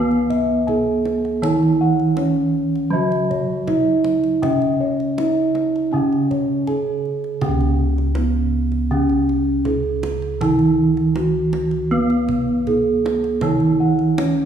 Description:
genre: Javanese gamelan.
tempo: 80 BPM.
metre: 4/4.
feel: straight.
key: C# slendro.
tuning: A4 = 443 Hz.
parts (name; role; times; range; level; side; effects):
gamelan-type bronze metallophone; melody; 0.0-14.5 s; B3-40c to B4-40c; -20 LUFS; right 2 dB; none.
gamelan-type bronze metallophone; accompaniment; 0.0-14.5 s; C#3 to B3-40c; -22 LUFS; right 1 dB; none.
gamelan-type bossed gongs; arpeggios; 0.0-7.1, 13.4-14.5 s; C#5 to G#5+20c; -26 LUFS; left 5 dB; none.
gamelan-type bossed gongs; bass; 0.0-14.3 s; C#2 to D#4+40c; -24 LUFS; equal; none.
kendang; percussion; 0.1-14.4 s; none; -30 LUFS; right 3 dB; none.
room: wet recital hall reverb, RT60 1.7 s.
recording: recorded in a church or concert hall, studio reverb.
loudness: -16 LUFS.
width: side -8 dB against mid.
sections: 0.0-7.4 A section; 7.4-14.5 A section.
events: none.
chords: none.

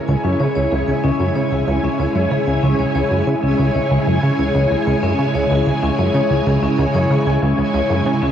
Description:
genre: ambient, sequencer-driven space music.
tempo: 94 BPM.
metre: 4/4.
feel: straight.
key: C# minor.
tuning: A4 = 440 Hz.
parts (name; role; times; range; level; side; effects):
string machine, full ensemble; sustained chords; 0.0-8.3 s; C#3 to G#5; -19 LUFS; right 1 dB; ensemble chorus, shimmer reverb.
vibraphone with medium hard mallets; arpeggios; 0.0-8.3 s; C#4 to G#5; -22 LUFS; left 3 dB; auto-pan, ping-pong delay, shimmer reverb.
plucky analog bass; riff; 0.1-8.3 s; C#2 to C#3; -19 LUFS; right 1 dB; ping-pong delay.
room: moderate plate reverb, RT60 3.3 s.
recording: worn, warbling old tape, cassette tape, warbly pitch drift.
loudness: -15 LUFS.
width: side -9 dB against mid.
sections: 0.0-8.3 A section.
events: none.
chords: 0.0 C#m.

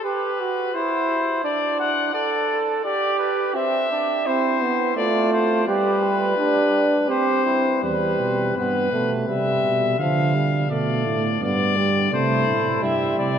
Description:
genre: classical, imitative canzona for brass ensemble.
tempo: 85 BPM.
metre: 3/4.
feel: straight.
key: C major.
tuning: A4 = 442 Hz.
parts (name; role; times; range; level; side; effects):
bright trumpet; melody; 0.0-13.4 s; B4 to F#5; -23 LUFS; left 5 dB; none.
mellow flugelhorn; second line; 0.0-7.8, 12.1-13.4 s; C4 to B4; -25 LUFS; right 5 dB; none.
clear euphonium; accompaniment; 4.3-13.4 s; F3 to D4; -22 LUFS; right 2 dB; none.
mellow tuba; bass; 7.8-13.4 s; E2 to D3; -24 LUFS; right 3 dB; none.
room: wet cathedral reverb, RT60 5.7 s.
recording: none.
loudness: -19 LUFS.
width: side -8 dB against mid.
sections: 0.0-7.8 A section; 7.8-13.4 B section.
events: none.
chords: 0.0 G; 0.8 C/E; 1.5 D; 2.9 G; 3.6 C; 5.0 F/A; 5.7 G; 7.1 C; 7.8 Em; 9.3 Cmaj7; 10.0 Dm; 11.4 G; 12.1 C.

